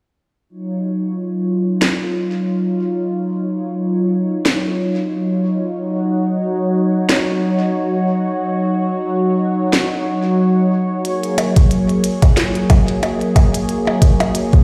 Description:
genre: IDM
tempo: 91 BPM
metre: 4/4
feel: swing 56% on 16ths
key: Eb minor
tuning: A4 = 440 Hz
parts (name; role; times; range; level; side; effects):
- warm analog pad; sustained chords; 0.5-14.6 s; Gb3 to Db5; -19 LUFS; equal; chorus
- glitchy drum kit; drums; 1.8-14.6 s; hi-hat, percussion blips, snare drum; -22 LUFS; equal; overdrive, digital delay
- electronic kick drum; drums; 11.6-14.6 s; none; -13 LUFS; equal; none
room: moderate lush hall reverb, RT60 2.4 s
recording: played on a big sound system in a bare room, stone room reverb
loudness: -17 LUFS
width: mono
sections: 0.5-14.6 A section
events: filter sweep on analog synth pad 0.5-14.6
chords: 0.5 Ebm9; 11.1 Ab9sus4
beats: | 0.50 1.16 1.82 2.48 | 3.14 3.80 4.46 5.12 | 5.78 6.43 7.09 7.75 | 8.41 9.07 9.73 10.39 | 11.05 11.71 12.37 13.03 | 13.69 14.35

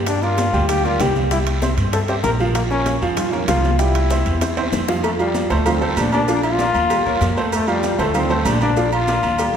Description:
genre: latin, salsa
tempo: 193 BPM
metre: 4/4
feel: straight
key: unclear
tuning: A4 = 441 Hz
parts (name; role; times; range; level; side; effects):
- bright baby grand piano; accompaniment; 0.0-9.6 s; F3 to G5; -22 LUFS; right 3 dB; none
- upright bass; bass; 0.0-9.6 s; Bb1 to G2; -22 LUFS; equal; none
- clear trombone; melody; 0.1-9.6 s; G3 to Bb4; -21 LUFS; left 3 dB; none
- bongos and cowbell; percussion; 0.1-9.5 s; none; -29 LUFS; left 4 dB; none
- congas; percussion; 0.1-9.5 s; none; -28 LUFS; equal; none
- guiro; percussion; 0.1-9.6 s; none; -33 LUFS; right 3 dB; none
- maracas; percussion; 0.1-9.6 s; none; -36 LUFS; right 4 dB; none
- timbales and agogo bells; percussion; 0.1-9.5 s; none; -28 LUFS; right 4 dB; none
room: wet scoring stage reverb, RT60 1.6 s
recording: recorded in a church or concert hall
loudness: -16 LUFS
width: side -8 dB against mid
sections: 0.0-5.0 A section; 5.0-9.6 B section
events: drum fill 4.4-5.0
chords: 0.1 Gm7; 1.3 C; 2.6 Bbm; 3.8 C; 5.0 F; 5.7 Dm7; 6.3 Bb; 6.9 Eb7; 7.5 F; 8.1 Dm7; 8.8 Bb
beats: | 0.07 0.38 0.69 1.00 | 1.31 1.62 1.93 2.24 | 2.55 2.86 3.17 3.48 | 3.79 4.11 4.42 4.73 | 5.04 5.35 5.66 5.97 | 6.28 6.59 6.90 7.21 | 7.52 7.83 8.14 8.46 | 8.77 9.08 9.39

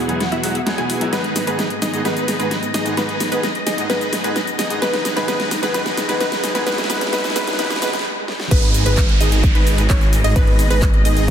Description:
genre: EDM, festival progressive house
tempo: 130 BPM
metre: 4/4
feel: straight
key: G# minor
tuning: A4 = 440 Hz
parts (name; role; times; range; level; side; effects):
- muted studio string section; sustained chords; 0.0-11.3 s; C#2 to F#5; -27 LUFS; left 2 dB; sidechain pumping
- wide unison pluck; arpeggios; 0.0-11.3 s; B4 to G#5; -24 LUFS; equal; cassette tape, sidechain pumping, dub echo
- dense compressed supersaw; riff; 0.0-11.3 s; B3 to G#5; -24 LUFS; right 1 dB; sidechain pumping, low-pass filter, dub echo
- bright baby grand piano; accompaniment; 0.1-7.9 s; G#2 to G#4; -27 LUFS; left 1 dB; sidechain pumping, dub echo
- big-room dance drum kit; drums; 0.1-11.3 s; cabasa, crash cymbal, handclaps, hi-hat, snare drum; -23 LUFS; equal; none
- riser and downlifter; sound effects; 4.5-11.3 s; none; -28 LUFS; right 2 dB; none
- wide detuned saw bass; bass; 8.5-11.3 s; G#1; -18 LUFS; equal; chorus, sidechain pumping
- electronic kick drum; drums; 8.5-11.3 s; none; -16 LUFS; equal; none
room: moderate lush hall reverb, RT60 1.9 s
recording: dense, heavily limited modern master, high-pass filter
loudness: -16 LUFS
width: side -9 dB against mid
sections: 0.0-8.5 A section; 8.5-11.3 B section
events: build-up 0.0-8.5; drum fill 0.0-8.1, 8.3; filter sweep on supersaw synth 0.0-8.5; stop 8.1-8.5; drop 8.5-11.3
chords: 0.0 Eadd9; 1.1 G#m; 4.8 C#madd9; 6.7 Eadd9; 8.5 G#m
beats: 0.20 0.67 | 1.13 1.59 2.05 2.51 | 2.97 3.44 3.90 4.36 | 4.82 5.28 5.74 6.21 | 6.67 7.13 7.59 8.05 | 8.51 8.97 9.44 9.90 | 10.36 10.82 11.28

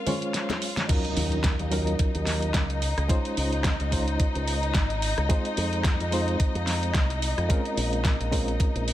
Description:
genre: nu-disco, nu disco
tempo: 109 BPM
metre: 4/4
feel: swing 56% on 16ths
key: Eb dorian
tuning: A4 = 440 Hz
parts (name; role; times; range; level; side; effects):
- reed electric piano; accompaniment; 0.0-8.9 s; Gb3 to Db5; -31 LUFS; right 1 dB; overdrive, fast tremolo, sidechain pumping, digital delay
- dark symphonic string section; sustained chords; 0.0-8.9 s; Eb4 to F5; -32 LUFS; left 2 dB; sidechain pumping
- pop drum kit; drums; 0.1-8.9 s; crash cymbal, hi-hat, rim click, snare drum; -31 LUFS; equal; none
- congas and bongos; percussion; 0.1-0.9 s; none; -34 LUFS; left 3 dB; none
- electronic kick drum; drums; 0.9-8.7 s; none; -24 LUFS; equal; none
- impact; sound effects; 0.9-3.1 s; none; -37 LUFS; equal; none
- fingered electric bass with an envelope filter; bass; 1.2-8.9 s; Ab1 to F2; -28 LUFS; equal; sidechain pumping
room: little or no reverb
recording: none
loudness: -23 LUFS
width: side -13 dB against mid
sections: 0.9-8.9 A section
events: break 0.0-0.9; drum fill 0.3-0.9; drop 0.9-8.9; impact 0.9-3.1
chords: 0.0 Bbm9 (rootless); 0.9 Ebm9; 2.8 Dbmaj9; 5.3 Fm7; 7.5 Bbm9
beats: 0.34 | 0.89 1.44 1.99 2.54 | 3.10 3.65 4.20 4.75 | 5.30 5.85 6.40 6.95 | 7.50 8.05 8.60

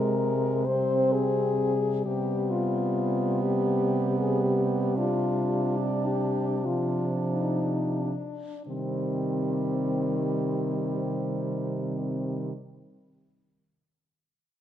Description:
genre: classical, lyrical piece for horn quartet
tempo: 28-46 BPM (dotted quarters)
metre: 12/8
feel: rubato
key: C minor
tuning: A4 = 441 Hz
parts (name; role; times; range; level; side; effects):
- warm French horn; melody; 0.0-12.5 s; C4 to C5; -30 LUFS; left 6 dB; none
- clear French horn; second line; 0.0-12.5 s; G3 to D4; -32 LUFS; right 7 dB; none
- mellow French horn; accompaniment; 0.0-12.5 s; Eb3 to Ab3; -31 LUFS; left 1 dB; none
- mellow French horn; bass; 0.0-12.5 s; C3; -30 LUFS; right 2 dB; none
room: moderate recital hall reverb, RT60 1.6 s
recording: none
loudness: -25 LUFS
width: side -10 dB against mid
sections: 0.0-8.7 A section; 8.7-14.6 B section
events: slowing down 0.0-8.7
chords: 0.0 Fm/C (rootless); 2.1 G7/C; 8.7 Cm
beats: 0.68 | 2.06 3.44 4.97 6.65 | 8.68 10.59 12.50

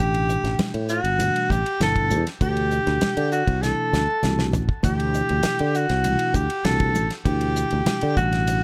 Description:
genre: electric jazz fusion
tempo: 99 BPM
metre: 4/4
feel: straight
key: unclear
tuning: A4 = 440 Hz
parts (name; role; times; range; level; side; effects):
- breathy alto saxophone; melody; 0.0-8.6 s; F#4 to A4; -26 LUFS; equal; none
- bell-like tine electric piano; accompaniment; 0.0-8.6 s; B2 to G4; -31 LUFS; equal; lush chorus
- sustaining fretless electric bass; bass; 0.0-8.6 s; G1 to D3; -26 LUFS; equal; none
- damped 70s drum kit; drums; 0.1-8.6 s; hi-hat, kick drum, ride cymbal, snare drum, toms; -30 LUFS; equal; none
- congas; percussion; 0.3-8.5 s; none; -32 LUFS; equal; none
room: light reverb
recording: none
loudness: -22 LUFS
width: mono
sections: 0.0-8.6 A section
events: drum fill 3.6-4.8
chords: 0.0 A9sus4; 2.4 D9sus4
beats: 0.59 1.20 1.80 | 2.41 3.02 3.63 4.23 | 4.84 5.45 6.05 6.66 | 7.27 7.88 8.48

